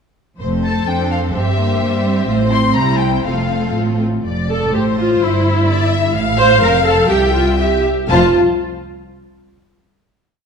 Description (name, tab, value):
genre	quick classical-period movement for string orchestra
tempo	126 BPM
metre	2/4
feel	rubato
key	F major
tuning	A4 = 440 Hz
part	clear symphonic violin section	second line	0.4-8.4 s	E4 to G5	-21 LUFS	left 4 dB	none
part	rich symphonic viola section	accompaniment	0.4-8.4 s	G3 to C5	-16 LUFS	equal	none
part	rich symphonic cello section	bass	0.4-8.4 s	C2 to G3	-21 LUFS	right 2 dB	none
part	warm studio double bass section	bass	0.4-8.4 s	F1 to G2	-20 LUFS	right 2 dB	none
part	warm symphonic violin section	melody	0.6-8.4 s	C5 to C6	-23 LUFS	left 6 dB	none
room	wet scoring stage reverb, RT60 1.5 s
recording	dark, warm production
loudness	-13 LUFS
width	side -6 dB against mid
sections	0.4-4.3 A section; 4.3-8.1 A section; 8.1-9.1 final chord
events	none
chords	0.4 F; 1.3 C7/G; 2.3 F/A (rootless); 2.8 C7; 3.3 F; 5.2 C/G; 6.2 F/A; 6.6 F; 7.1 C; 8.1 F